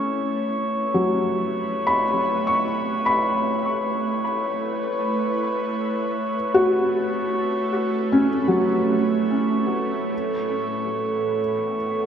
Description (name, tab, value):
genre	ambient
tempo	free time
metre	none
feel	none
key	A major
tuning	A4 = 440 Hz
part	shimmering ambient pad	sustained chords	0.0-12.1 s	A2 to C#5	-29 LUFS	right 2 dB	chorus, built-in reverb
part	felt-muted upright piano	arpeggios	0.0-12.1 s	F#3 to C#6	-23 LUFS	left 1 dB	analog delay
part	analog drone	drone	0.0-12.1 s	A3	-28 LUFS	right 4 dB	chorus
part	glass harmonica	texture	0.0-12.1 s	C#5 to C#6	-27 LUFS	left 1 dB	none
room	wet plate reverb, RT60 3.2 s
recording	echo-heavy mix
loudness	-20 LUFS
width	side -8 dB against mid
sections	0.0-12.1 A section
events	fade-in on ambient pad 0.0-12.1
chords	0.0 A; 10.1 Esus4/A